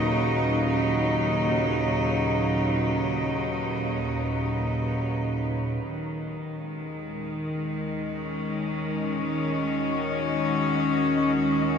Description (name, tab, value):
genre	dark ambient drone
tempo	free time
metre	none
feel	none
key	Eb minor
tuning	A4 = 438 Hz
part	rich studio cello section	sustained chords	0.0-11.8 s	Eb2 to Cb5	-25 LUFS	equal	none
part	tubular bells	arpeggios	0.0-5.9 s	none	barely audible	none	none
part	deep rumbling drone	drone	0.0-11.8 s	Eb2 to Bb2	-31 LUFS	right 1 dB	built-in reverb
part	wind-like tuned noise texture	texture	6.5-11.8 s	Eb5	-40 LUFS	left 4 dB	none
room	wet huge ambient reverb, RT60 8.3 s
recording	none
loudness	-24 LUFS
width	side -7 dB against mid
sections	0.0-5.9 A section; 5.9-11.8 B section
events	fade-in on synth drone 5.9-11.8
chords	0.0 Dbsus2/Eb; 5.9 Ebm